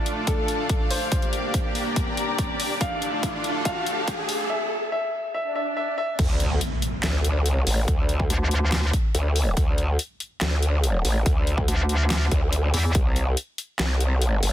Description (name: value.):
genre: heavy wobble dubstep.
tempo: 142 BPM.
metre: 4/4.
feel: half-time.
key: D minor.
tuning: A4 = 440 Hz.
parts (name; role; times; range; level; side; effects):
warm grand piano; melody; 0.0-6.2 s; A4 to F5; -30 LUFS; left 1 dB; vintage 12-bit sampler grit, ping-pong delay.
supersaw pad; sustained chords; 0.0-4.5 s; A3 to D5; -30 LUFS; right 1 dB; sidechain pumping.
riser, swell and impact; sound effects; 1.3-7.9 s; none; -31 LUFS; equal; none.
muted studio string section; texture; 0.0-4.5 s; D4 to Bb5; -30 LUFS; left 2 dB; sidechain pumping.
dubstep drum kit; drums; 0.1-14.5 s; crash cymbal, handclaps, hi-hat, snare drum; -29 LUFS; left 1 dB; overdrive, high-pass filter on hats, high-pass filter on snare, high-pass filter on cymbals.
electronic kick drum; drums; 0.3-13.0 s; none; -24 LUFS; equal; overdrive.
growl bass; bass; 6.2-14.5 s; G1 to D2; -22 LUFS; equal; chorus, overdrive.
metallic wobble bass; bass; 8.3-8.9, 11.7-12.9 s; D2 to E2; -21 LUFS; equal; chorus, overdrive.
room: little or no reverb.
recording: dense, heavily limited modern master, high-pass filter.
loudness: -21 LUFS.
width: side -12 dB against mid.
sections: 0.0-6.2 A section; 6.2-14.5 B section.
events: build-up 0.0-6.2; riser 1.3-4.5; drum fill 2.8-4.5; swell 5.3-6.2; drop 6.2-14.5; impact 6.2-7.9.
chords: 0.0 Dm; 1.1 Gm; 2.8 Dm; 4.5 N.C.; 6.2 D5; 12.9 C5.